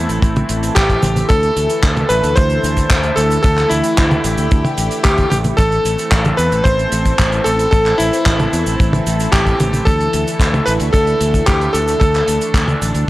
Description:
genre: italo disco.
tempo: 112 BPM.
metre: 4/4.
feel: straight.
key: unclear.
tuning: A4 = 440 Hz.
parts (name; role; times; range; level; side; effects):
bright electric grand piano; melody; 0.0-13.1 s; E4 to C5; -17 LUFS; equal; analog delay.
lush unison pad; sustained chords; 0.0-13.1 s; D3 to A4; -22 LUFS; equal; chorus, phaser.
fingered electric bass; bass; 0.0-13.0 s; A1 to E2; -19 LUFS; equal; none.
damped 70s drum kit; drums; 0.1-13.1 s; cabasa, handclaps, hi-hat, toms; -20 LUFS; equal; none.
kick drum; drums; 0.2-12.7 s; none; -14 LUFS; equal; none.
room: studio reverb.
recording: dry, gritty hardware recording.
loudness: -12 LUFS.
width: side -17 dB against mid.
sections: 0.0-13.1 A section.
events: none.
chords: 0.0 Am; 1.3 Dsus2; 5.6 Am; 9.9 Dsus2.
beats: 0.23 0.76 | 1.30 1.83 2.37 2.90 | 3.44 3.98 4.51 5.05 | 5.58 6.12 6.66 7.19 | 7.73 8.26 8.80 9.33 | 9.87 10.40 10.94 11.48 | 12.01 12.55 13.08.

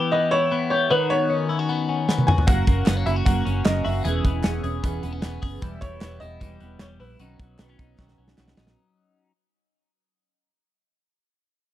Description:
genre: jangly indie pop.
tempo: 152 BPM.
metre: 4/4.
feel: straight.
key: B major.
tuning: A4 = 441 Hz.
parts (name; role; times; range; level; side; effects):
clear upright piano; melody; 0.0-8.3 s; B4 to G#5; -25 LUFS; right 1 dB; tape echo.
twelve-string electric guitar; arpeggios; 0.0-9.3 s; D#3 to G#4; -25 LUFS; left 5 dB; phaser.
modern studio drum kit; drums; 2.1-8.8 s; hi-hat, kick drum, snare drum, toms; -21 LUFS; equal; none.
picked steel-string acoustic guitar; accompaniment; 2.5-8.8 s; B2 to G#4; -31 LUFS; right 10 dB; none.
vintage muted fingered electric bass; bass; 2.5-8.7 s; E1 to B1; -27 LUFS; equal; none.
group handclap; percussion; 2.9-8.5 s; none; -43 LUFS; right 5 dB; none.
room: studio ambience.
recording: dry, close 1970s-style studio recording.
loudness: -20 LUFS.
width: side -13 dB against mid.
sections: 0.0-8.8 A section.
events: fade-out 0.0-8.8; drum fill 2.1-2.5, 8.0-8.8.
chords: 0.0 Em; 0.9 Badd9; 2.5 F#; 4.1 C#m7/E; 5.6 Em; 7.2 Badd9.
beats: 0.12 0.52 | 0.91 1.30 1.69 2.09 | 2.48 2.87 3.26 3.66 | 4.05 4.44 4.84 5.23 | 5.62 6.02 6.41 6.81 | 7.20 7.59 7.99 8.38.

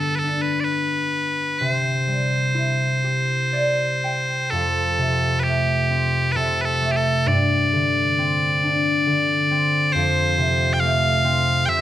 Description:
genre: celtic folk, Celtic slow air.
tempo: 59-69 BPM.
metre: 3/4.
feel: rubato.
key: unclear.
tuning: A4 = 440 Hz.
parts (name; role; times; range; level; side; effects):
loud bright bagpipes; melody; 0.0-11.8 s; G4 to G5; -21 LUFS; equal; slapback echo.
concert harp; accompaniment; 0.0-11.8 s; F2 to G5; -21 LUFS; left 1 dB; none.
room: light reverb.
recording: close, detailed microphones.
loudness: -18 LUFS.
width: side -12 dB against mid.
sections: 0.0-4.5 A section; 4.5-11.8 B section.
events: harp fill 3.0-4.5.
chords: 0.0 G; 1.6 C; 4.5 F; 7.3 Gsus4; 9.9 F.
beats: 0.69 | 1.61 2.55 3.53 | 4.51 5.45 6.36 | 7.27 8.18 9.06 | 9.93 10.80 11.67.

